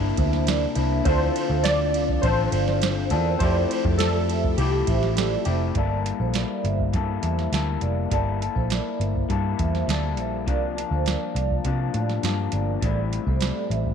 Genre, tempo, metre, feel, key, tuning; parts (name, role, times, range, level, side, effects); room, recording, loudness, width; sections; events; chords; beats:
indie pop, bedroom pop; 102 BPM; 4/4; straight; G dorian; A4 = 440 Hz
electric guitar through a small old amp; accompaniment; 0.0-13.9 s; A2 to A4; -28 LUFS; left 12 dB; lush chorus, warbly pitch drift
warm analog keys; accompaniment; 0.0-5.8 s; C4 to Bb4; -34 LUFS; right 12 dB; chorus
string machine, violins; sustained chords; 0.0-5.7 s; C3 to A4; -34 LUFS; equal; ensemble chorus
vintage muted picked electric bass; bass; 0.0-13.9 s; F1 to C3; -25 LUFS; equal
vibraphone with soft mallets; second line; 0.2-13.9 s; A4 to F5; -31 LUFS; right 11 dB; analog chorus, tape echo
soft vintage rhythm box; drums; 0.2-13.9 s; hi-hat, kick drum, ride cymbal, snare drum; -28 LUFS; right 2 dB
warbly lo-fi synth keys; melody; 1.1-5.4 s; G4 to D5; -26 LUFS; left 1 dB; ensemble chorus
light reverb, digital ambience; 1960s-style stereo with parts hard left and right; -21 LUFS; side -7 dB against mid
0.0-5.8 A section; 5.8-13.9 B section
0.0 C9; 1.1 Dm7; 3.4 Fmaj9; 5.8 Gm69; 10.5 C9sus4; 12.8 Am7
0.47 | 1.06 1.65 2.23 2.82 | 3.41 4.00 4.58 5.17 | 5.76 6.35 6.94 7.53 | 8.11 8.70 9.29 9.88 | 10.47 11.06 11.65 12.24 | 12.83 13.41